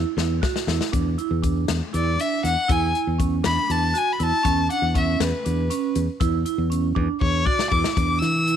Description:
progressive instrumental, band music in an uneven meter; 239 BPM (eighths); 7/8; straight; A4 = 436 Hz
vibraphone with medium hard mallets; arpeggios; 0.0-8.6 s; C#4 to F#4; -26 LUFS; right 14 dB
fingered electric bass; bass; 0.0-8.6 s; E2 to E3; -24 LUFS; left 1 dB
swinging big-band drum kit; drums; 0.2-8.6 s; hi-hat, kick drum, snare drum; -26 LUFS; left 3 dB
clear violin; melody; 1.9-8.6 s; B4 to E6; -23 LUFS; left 4 dB
small room ambience; 1960s-style stereo; -20 LUFS; side -9 dB against mid
0.0-8.0 A section
drum fill 0.0-0.9, 7.0-8.0; violin solo 0.0-8.0
0.0 Dsus2/E; 4.4 E7(no3); 6.2 Dsus2/E; 8.0 E7(no3)

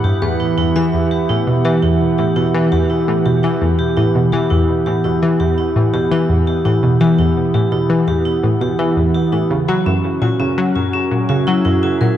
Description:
ambient, sequencer-driven space music; 84 BPM; 4/4; straight; E dorian; A4 = 441 Hz
evolving wavetable pad; sustained chords; 0.0-12.2 s; E3 to F#5; -20 LUFS; right 1 dB; chorus, built-in reverb
vibraphone with hard mallets; arpeggios; 0.0-12.2 s; C#4 to E5; -19 LUFS; right 1 dB; auto-pan, analog delay
analog pluck; riff; 0.0-12.1 s; E2 to F#3; -16 LUFS; left 1 dB; chorus, analog delay
moderate plate reverb, RT60 2.9 s; worn, warbling old tape, cassette tape, warbly pitch drift; -13 LUFS; side -11 dB against mid
0.0-12.2 A section
0.0 Emadd9; 9.5 F#7

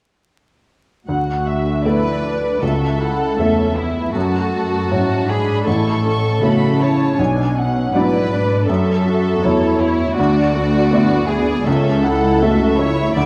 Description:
cinematic, emotional film score for orchestra; 79 BPM; 4/4; rubato; A major; A4 = 440 Hz
muted symphonic violin section; melody; 1.1-13.3 s; C#5 to C#6; -28 LUFS; equal
felt-muted upright piano; accompaniment; 1.1-13.3 s; A1 to D5; -22 LUFS; equal
muted symphonic viola section; accompaniment; 1.1-13.3 s; A3 to F#4; -26 LUFS; equal
muted symphonic cello section; bass; 1.1-13.3 s; C#2 to C#3; -22 LUFS; equal
muted symphonic violin section; second line; 1.9-13.3 s; E4 to D5; -24 LUFS; equal
moderate scoring stage reverb, RT60 1.7 s; vinyl crackle; -17 LUFS; mono
1.1-13.3 A section
1.1 Dsus2; 2.6 A/C#; 4.2 F#m7; 5.7 A; 7.2 Bm; 8.7 F#m7; 10.2 Dsus2; 11.7 A/C#

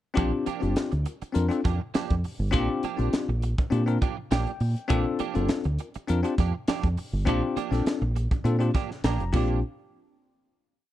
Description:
electric jazz fusion; 102 BPM; 4/4; swing 53% on 16ths; Bb major; A4 = 440 Hz
bell-like tine electric piano; accompaniment; 0.1-9.6 s; C4 to Bb5; -28 LUFS; left 4 dB; wide subtle chorus
clean electric guitar; stabs; 0.2-9.6 s; F3 to G4; -34 LUFS; right 12 dB; analog chorus
fingered electric bass; bass; 0.2-9.6 s; F1 to Bb2; -26 LUFS; right 1 dB
crisp fusion drum kit; drums; 0.2-9.5 s; crash cymbal, hi-hat, kick drum, snare drum; -28 LUFS; equal; vintage 12-bit sampler grit
studio ambience; -24 LUFS; side -13 dB against mid
0.2-9.6 groove; 9.6-10.9 final hit
tine electric piano fill 4.0-4.9, 8.7-9.6; drum fill 9.3
0.2 Bb6; 9.6 N.C.

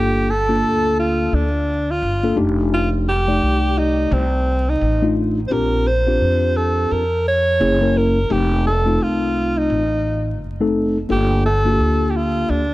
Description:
hip hop; 86 BPM; 4/4; swing 61% on 16ths; A4 = 435 Hz
breathy alto saxophone; melody; 0.0-12.7 s; C4 to C#5; -20 LUFS; right 1 dB
mellow tine electric piano; accompaniment; 0.0-12.6 s; A3 to D5; -20 LUFS; left 2 dB; slow stereo tremolo
upright bass; bass; 0.0-12.7 s; F1 to F2; -21 LUFS; equal
light reverb, studio reverb; dark, warm production, vinyl crackle; -16 LUFS; side -17 dB against mid
0.0-12.7 A section
0.0 Gm9; 2.4 F13; 5.5 Bb69; 7.6 F#9; 8.3 F9; 11.1 Gm9

